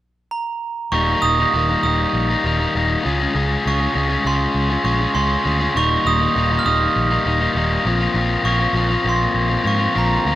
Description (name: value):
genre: rock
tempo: 100 BPM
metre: 4/4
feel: straight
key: Eb mixolydian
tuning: A4 = 440 Hz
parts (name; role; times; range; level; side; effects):
- glockenspiel with hard plastic mallets; melody; 0.3-10.4 s; Bb5 to F6; -21 LUFS; right 5 dB; slapback echo
- overdriven electric guitar; riff; 0.9-10.4 s; Eb2 to Ab4; -19 LUFS; left 3 dB; none
- fingered electric bass; bass; 0.9-10.4 s; Eb1 to Ab2; -21 LUFS; equal; none
room: studio reverb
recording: rough home demo mix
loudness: -16 LUFS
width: side -14 dB against mid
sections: 0.9-10.4 A section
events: none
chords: 0.0 N.C.; 0.9 Eb; 3.0 Dbmaj7; 5.7 Eb; 7.9 Bbmadd9